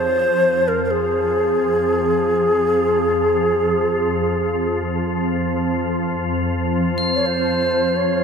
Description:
world meditative, free-time meditation music; free time; F minor; A4 = 440 Hz
breathy low Native American-style wooden flute; melody; 0.0-8.2 s; Ab4 to Db5; -18 LUFS; equal
soft additive organ-like pad; drone; 0.0-8.2 s; F2 to F3; -21 LUFS; equal; ensemble chorus, built-in reverb
crotales; texture; 7.0-8.2 s; C8; -25 LUFS; right 1 dB
wet cathedral reverb, RT60 6.4 s; -17 LUFS; side -6 dB against mid
0.0-8.2 A section
free time

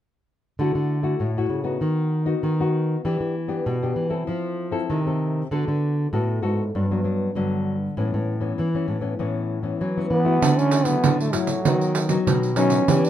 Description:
samba and choro; 98 BPM; 4/4; straight; D major; A4 = 441 Hz
nylon-string guitar; accompaniment; 0.6-13.1 s; G2 to A4; -26 LUFS; left 5 dB
nylon-string guitar; bass; 0.6-13.1 s; G2 to F#3; -24 LUFS; right 1 dB
growling trombone; melody; 10.1-13.1 s; F#3 to D4; -22 LUFS; right 1 dB
pandeiro; percussion; 10.4-13.1 s; -23 LUFS; right 7 dB
light reverb; minimal, uncompressed stereo recording; -20 LUFS; side -11 dB against mid
0.6-10.4 A section; 10.4-13.1 B section
0.6 Dadd9; 1.8 B/D#; 3.1 Em7; 4.3 Fmaj7; 5.5 D6; 6.7 Gmaj7; 8.0 Aadd9; 10.4 Dadd9; 11.7 B/D#
| 0.59 1.21 1.82 2.44 | 3.05 3.67 4.28 4.90 | 5.51 6.13 6.74 7.36 | 7.97 8.58 9.20 9.81 | 10.42 11.04 11.65 12.26 | 12.88

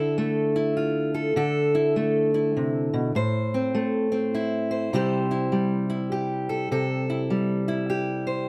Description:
folk, solo fingerstyle acoustic guitar; 101 BPM; 3/4; swing 62% on 8ths; C major; A4 = 439 Hz
fingerpicked steel-string acoustic guitar; solo; 0.0-8.5 s; A2 to C5; -25 LUFS; equal
moderate studio reverb, RT60 0.6 s; -25 LUFS; mono
0.0-6.7 A section; 6.7-8.5 A section
0.0 Dmadd9; 3.1 Am; 4.9 C6
0.18 0.78 | 1.37 1.96 2.55 | 3.14 3.74 4.33 | 4.92 5.51 6.10 | 6.70 7.29 7.88 | 8.47

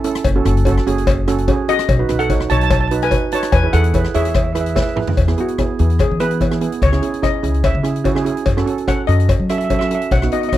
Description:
calypso; 146 BPM; 4/4; straight; E major; A4 = 440 Hz
steel pan; accompaniment; 0.0-10.6 s; B3 to C#5; -20 LUFS; right 6 dB
street-band drum kit; drums; 0.0-10.6 s; hi-hat, kick drum, rim click, snare drum, toms; -21 LUFS; left 1 dB
upright bass; bass; 0.2-10.3 s; F#1 to F#3; -18 LUFS; left 1 dB
cowbell; percussion; 0.2-10.6 s; -22 LUFS; left 5 dB
steel pan; melody; 1.7-10.5 s; F#4 to A5; -21 LUFS; left 1 dB; slapback echo
little or no reverb; dry, close 1970s-style studio recording; -14 LUFS; side -13 dB against mid
0.0-5.2 A section; 5.2-10.6 B section
drum fill 4.8-5.2; steel pan solo 5.2-10.6
0.2 F#m; 1.9 B7; 3.5 E; 5.2 Eadd9; 6.8 C#madd9; 8.5 F#m
| 0.25 0.66 1.07 1.48 | 1.89 2.30 2.71 3.12 | 3.53 3.94 4.35 4.76 | 5.17 5.58 6.00 6.41 | 6.82 7.23 7.64 8.05 | 8.47 8.88 9.29 9.70 | 10.11 10.52

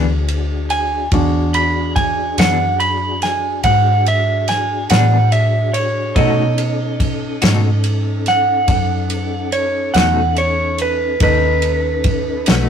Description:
slow blues; 48 BPM (dotted quarters); 12/8; straight; A4 = 438 Hz
clear baby grand piano; accompaniment; 0.0-12.7 s; D4 to C#5; -23 LUFS; right 1 dB
semi-hollow electric guitar; accompaniment; 0.0-12.7 s; B2 to G#4; -20 LUFS; left 7 dB; tremolo
mellow tonewheel organ; sustained chords; 0.0-12.7 s; C#4 to A4; -26 LUFS; left 4 dB; slow rotary speaker, chorus vibrato
vintage muted fingered electric bass; bass; 0.0-12.7 s; B1 to B2; -19 LUFS; left 1 dB
warm soul drum kit; drums; 0.3-12.7 s; kick drum, ride cymbal, snare drum; -21 LUFS; equal
electric slide guitar; second line; 0.7-12.7 s; B4 to B5; -17 LUFS; right 3 dB; slapback echo
moderate small room ambience, RT60 0.5 s; rough rehearsal-room recording, warm saturation; -14 LUFS; side -8 dB against mid
0.0-12.7 A section
electric slide guitar solo 0.0-12.7
0.0 E7; 6.2 B7
| 1.12 2.38 3.65 4.91 | 6.17 7.43 8.69 9.95 | 11.21 12.47

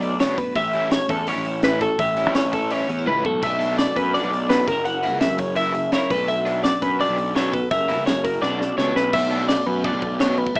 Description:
math rock and midwest emo; 168 BPM; 4/4; straight; B minor; A4 = 439 Hz
twelve-string electric guitar; accompaniment; 0.0-10.6 s; F#2 to A#4; -29 LUFS; right 1 dB
twelve-string electric guitar; arpeggios; 0.0-10.6 s; A4 to F#5; -22 LUFS; left 1 dB
overdriven electric guitar; riff; 0.0-10.6 s; B2 to E4; -28 LUFS; equal; tremolo
fuzz picked electric bass; bass; 0.0-10.6 s; F#1 to F#2; -26 LUFS; equal; overdrive
crisp fusion drum kit; drums; 0.0-10.6 s; crash cymbal, hi-hat, kick drum, snare drum, toms; -25 LUFS; equal
light reverb; rough home demo mix, small speaker sound; -18 LUFS; side -28 dB against mid
0.0-9.1 A section; 9.1-10.6 B section
drum fill 3.1-3.4, 8.4-9.1
0.0 Bm7; 0.6 A7; 3.4 Bm7; 4.7 F#7; 6.1 Bm7; 7.7 F#7; 8.4 Bm7
0.20 | 0.56 0.92 1.27 1.63 | 1.99 2.35 2.71 3.06 | 3.42 3.78 4.14 4.49 | 4.85 5.21 5.57 5.92 | 6.28 6.64 7.00 7.35 | 7.71 8.07 8.42 8.78 | 9.13 9.49 9.85 10.20 | 10.56

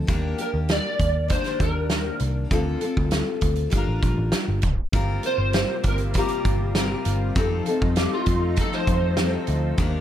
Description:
indie pop, bedroom pop; 99 BPM; 4/4; straight; G minor; A4 = 440 Hz
picked steel-string acoustic guitar; accompaniment; 0.0-10.0 s; D3 to Bb4; -28 LUFS; left 4 dB; lush chorus, warbly pitch drift
vintage muted picked electric bass; bass; 0.0-10.0 s; G1 to G2; -25 LUFS; equal
loose indie drum kit; drums; 0.1-9.9 s; hi-hat, kick drum, snare drum; -25 LUFS; right 1 dB
electric slide guitar; melody; 0.4-9.3 s; F4 to D5; -27 LUFS; equal; ensemble chorus, analog delay
lush unison pad; sustained chords; 4.9-10.0 s; C3 to G4; -34 LUFS; equal; chorus
studio ambience; tape stop; -20 LUFS; side -11 dB against mid
0.0-4.9 A section; 4.9-10.0 B section
tape stop 4.6-4.9; electric slide guitar solo 4.9-10.0
0.1 Ebmaj7; 2.5 Dm7; 3.7 Gm7; 7.4 F7
| 0.09 0.69 1.30 1.91 | 2.51 3.12 3.73 4.33 | 4.94 5.54 6.15 6.75 | 7.36 7.97 8.57 9.18 | 9.78

